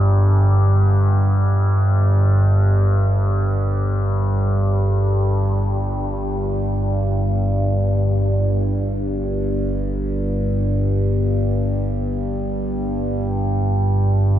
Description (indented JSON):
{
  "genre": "ambient",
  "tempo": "free time",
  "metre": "none",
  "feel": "none",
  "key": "unclear",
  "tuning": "A4 = 439 Hz",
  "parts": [
    { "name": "overtone-sweeping drone", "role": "solo", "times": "0.0-14.4 s", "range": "G1 to G2", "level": "-16 LUFS", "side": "equal", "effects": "chorus, built-in reverb, tape echo" }
  ],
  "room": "wet plate reverb, RT60 3.1 s",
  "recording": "echo-heavy mix",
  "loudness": "-17 LUFS",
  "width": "side -12 dB against mid",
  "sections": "0.0-8.6 A section; 8.6-14.4 B section",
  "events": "none",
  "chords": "none"
}